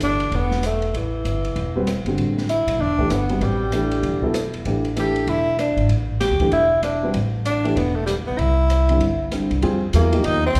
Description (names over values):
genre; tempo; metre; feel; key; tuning
modal jazz; 193 BPM; 4/4; swing 62% on 8ths; A dorian; A4 = 440 Hz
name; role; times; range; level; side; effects
growling tenor saxophone; melody; 0.0-10.6 s; E3 to G4; -24 LUFS; equal; none
warm baby grand piano; accompaniment; 0.0-10.4 s; D3 to B4; -26 LUFS; equal; none
upright bass; bass; 0.0-10.6 s; E1 to F2; -25 LUFS; equal; none
open jazz drum kit; drums; 0.0-10.6 s; hi-hat, kick drum, ride cymbal, rim click, snare drum; -34 LUFS; equal; none
room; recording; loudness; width
wet recital hall reverb, RT60 1.5 s; recorded in a church or concert hall; -21 LUFS; mono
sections
0.0-9.6 A section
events
none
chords
0.0 A7sus4; 8.4 C; 9.6 F9sus4